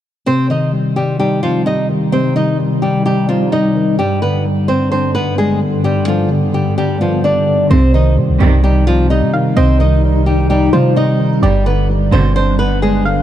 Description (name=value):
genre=hip hop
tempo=129 BPM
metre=4/4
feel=half-time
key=C harmonic minor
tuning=A4 = 439 Hz
part: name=flamenco guitar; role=melody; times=0.3-13.0 s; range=F3 to Eb5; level=-17 LUFS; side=equal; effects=none
part: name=tine electric piano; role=accompaniment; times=0.3-13.2 s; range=G2 to Eb4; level=-16 LUFS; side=left 2 dB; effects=lush chorus
part: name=granular cloud pad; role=sustained chords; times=1.1-13.2 s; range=G2 to B4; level=-22 LUFS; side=right 1 dB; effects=built-in reverb
part: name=soft round pluck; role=second line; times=7.7-13.2 s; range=C5 to F5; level=-23 LUFS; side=right 5 dB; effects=chorus, tape echo
part: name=dark symphonic string section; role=stabs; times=7.7-12.5 s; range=G2 to Eb3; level=-21 LUFS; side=right 5 dB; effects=none
part: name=clean 808-style bass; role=bass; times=7.7-13.2 s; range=G1 to C3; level=-14 LUFS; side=equal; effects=none
room=small room ambience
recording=dark, warm production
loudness=-11 LUFS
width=side -11 dB against mid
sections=0.3-7.7 A section; 7.7-13.2 B section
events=none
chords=0.3 Cm; 4.0 G; 7.7 Cm; 11.4 G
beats=| 0.26 0.73 1.19 1.66 | 2.12 2.59 3.06 3.52 | 3.98 4.45 4.92 5.38 | 5.84 6.31 6.78 7.24 | 7.71 8.17 8.64 9.10 | 9.57 10.03 10.50 10.96 | 11.43 11.89 12.36 12.82